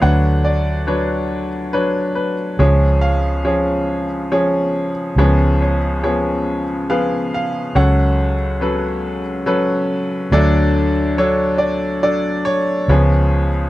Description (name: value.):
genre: acoustic folk-pop ballad.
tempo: 70 BPM.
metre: 3/4.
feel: straight.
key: unclear.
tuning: A4 = 440 Hz.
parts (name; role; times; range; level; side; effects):
bright upright piano; melody; 0.0-13.7 s; C#2 to F#5; -17 LUFS; left 1 dB; none.
vintage muted fingered electric bass; bass; 0.0-13.7 s; C#2 to D2; -17 LUFS; equal; none.
room: light reverb.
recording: dry, close 1970s-style studio recording.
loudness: -15 LUFS.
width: side -16 dB against mid.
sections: 0.0-13.7 A section.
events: none.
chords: 0.0 Bmadd9/D; 2.6 C#; 10.3 D; 12.9 C#7.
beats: | 0.03 0.89 1.74 | 2.60 3.46 4.32 | 5.18 6.04 6.89 | 7.75 8.61 9.46 | 10.32 11.18 12.03 | 12.88.